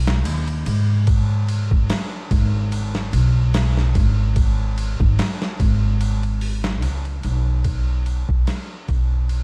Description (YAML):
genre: trip hop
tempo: 73 BPM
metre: 4/4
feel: swing 55% on 16ths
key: G# minor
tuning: A4 = 438 Hz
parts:
  - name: upright bass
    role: bass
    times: 0.0-9.4 s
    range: G#1 to G#2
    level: -21 LUFS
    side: equal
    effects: none
  - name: boom bap sampler-style drum kit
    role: drums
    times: 0.1-9.4 s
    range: hi-hat, kick drum, ride cymbal, snare drum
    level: -26 LUFS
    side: equal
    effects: none
room: little or no reverb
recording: vinyl crackle, lossy compression artefacts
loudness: -20 LUFS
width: mono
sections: 0.0-9.4 A section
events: fade-out 5.5-9.4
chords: none